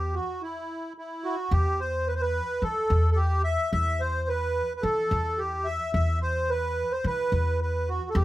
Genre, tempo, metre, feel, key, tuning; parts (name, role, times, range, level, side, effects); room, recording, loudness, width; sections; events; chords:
Arabic maqam ensemble; 108 BPM; 4/4; straight; E minor; A4 = 439 Hz
accordion; melody; 0.0-8.2 s; E4 to E5; -27 LUFS; right 1 dB; light tremolo tuning
upright bass; bass; 0.0-8.2 s; E2 to E3; -26 LUFS; equal
light reverb; band playing live in one room; -24 LUFS; side -16 dB against mid
0.0-1.5 A section; 1.5-8.2 B section